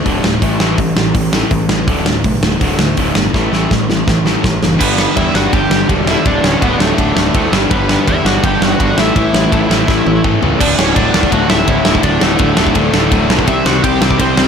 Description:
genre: punk rock.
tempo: 165 BPM.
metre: 4/4.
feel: straight.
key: unclear.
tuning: A4 = 437 Hz.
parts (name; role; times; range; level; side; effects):
crunchy overdriven guitar; riff; 0.0-14.5 s; D2 to C4; -18 LUFS; left 13 dB; none.
distorted electric guitar; riff; 0.0-14.5 s; D2 to C4; -20 LUFS; right 11 dB; distortion.
fuzz picked electric bass; bass; 0.1-14.5 s; D1 to A2; -18 LUFS; equal; overdrive.
big rock drum kit; drums; 0.1-14.5 s; crash cymbal, hi-hat, kick drum, ride cymbal, snare drum, toms; -14 LUFS; right 1 dB; none.
high-gain lead guitar; melody; 4.8-14.5 s; A3 to G5; -18 LUFS; right 1 dB; distortion.
overdriven electric guitar; riff; 4.8-14.5 s; D2 to C4; -20 LUFS; right 1 dB; none.
room: light reverb.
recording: none.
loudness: -10 LUFS.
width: side -7 dB against mid.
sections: 0.0-4.8 A section; 4.8-10.6 B section; 10.6-14.5 C section.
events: drum fill 3.3-4.8, 9.9-10.6.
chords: 0.4 A5; 1.9 D5; 3.3 A5; 4.8 G; 6.3 D5; 7.5 G; 9.0 A5; 10.6 D5; 13.5 C.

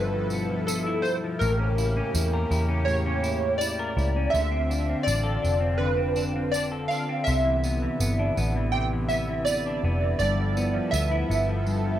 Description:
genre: indie pop, bedroom pop.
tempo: 82 BPM.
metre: 4/4.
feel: straight.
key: C major.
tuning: A4 = 437 Hz.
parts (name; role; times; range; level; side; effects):
warm analog keys; melody; 0.0-12.0 s; A4 to G5; -28 LUFS; right 1 dB; ensemble chorus.
semi-hollow electric guitar; accompaniment; 0.0-12.0 s; G2 to Bb4; -30 LUFS; left 2 dB; lush chorus, warbly pitch drift.
lush unison pad; sustained chords; 0.0-12.0 s; B2 to A4; -34 LUFS; equal; chorus.
vintage muted picked electric bass; bass; 0.0-12.0 s; F1 to E2; -27 LUFS; equal; none.
tambourine; percussion; 0.3-11.8 s; none; -37 LUFS; right 4 dB; none.
room: light reverb.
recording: none.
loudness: -23 LUFS.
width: side -12 dB against mid.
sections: 0.0-12.0 A section.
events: none.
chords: 0.0 G13; 1.4 A7b9; 4.3 Dm7; 7.3 Cmaj9; 10.2 G13.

